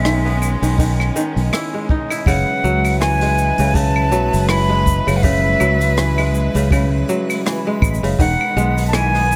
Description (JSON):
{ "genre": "folktronica", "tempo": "81 BPM", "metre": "4/4", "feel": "swing 56% on 16ths", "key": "unclear", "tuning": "A4 = 440 Hz", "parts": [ { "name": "jazz flute", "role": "melody", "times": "0.0-9.4 s", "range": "E5 to B5", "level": "-22 LUFS", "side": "equal", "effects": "digital delay" }, { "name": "rich string quartet", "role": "sustained chords", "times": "0.0-9.4 s", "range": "D#3 to B4", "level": "-26 LUFS", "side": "equal", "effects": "none" }, { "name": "kora", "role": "arpeggios", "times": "0.0-9.4 s", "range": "C#3 to E4", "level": "-24 LUFS", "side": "equal", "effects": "digital delay" }, { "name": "fingered electric bass", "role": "bass", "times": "0.0-9.4 s", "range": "E1 to C#2", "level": "-20 LUFS", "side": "equal", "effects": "none" }, { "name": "jazz brush drum kit", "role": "drums", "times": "0.1-9.4 s", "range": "claves, hi-hat, rim click, shaker", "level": "-28 LUFS", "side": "equal", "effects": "none" }, { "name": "kick drum", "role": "drums", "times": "0.8-8.4 s", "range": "none", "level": "-21 LUFS", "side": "equal", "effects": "none" }, { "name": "backwards swelling texture", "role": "texture", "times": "4.0-9.4 s", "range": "B4 to B5", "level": "-36 LUFS", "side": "equal", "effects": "none" } ], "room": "small room ambience", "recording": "none", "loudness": "-17 LUFS", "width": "mono", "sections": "0.0-9.4 A section", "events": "none", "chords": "0.0 Emaj7; 2.3 F#9sus4; 8.2 Emaj7", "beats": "0.05 0.79 1.53 | 2.27 3.01 3.75 4.49 | 5.23 5.97 6.71 7.46 | 8.20 8.94" }